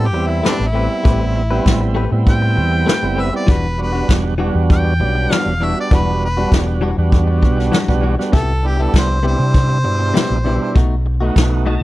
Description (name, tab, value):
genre	straight-eighth soul blues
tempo	99 BPM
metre	4/4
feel	straight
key	E minor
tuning	A4 = 440 Hz
part	clear harmonica	melody	0.0-10.7 s	D4 to G5	-22 LUFS	equal	overdrive
part	tonewheel organ	accompaniment	0.0-11.8 s	B2 to A5	-22 LUFS	right 4 dB	slow rotary speaker, overdrive
part	direct-recorded clean electric guitar	stabs	0.0-11.8 s	B2 to B4	-24 LUFS	left 4 dB	slapback echo
part	fingered electric bass	bass	0.0-11.8 s	E1 to C3	-17 LUFS	equal	none
part	vintage brush drum kit	drums	0.4-11.5 s	hi-hat, kick drum, snare drum	-16 LUFS	equal	none
room	little or no reverb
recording	none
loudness	-13 LUFS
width	side -17 dB against mid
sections	0.0-11.8 A section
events	tonewheel organ fill 11.4-11.8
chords	0.0 Am9; 3.5 Em9; 8.3 Cmaj7; 10.8 B7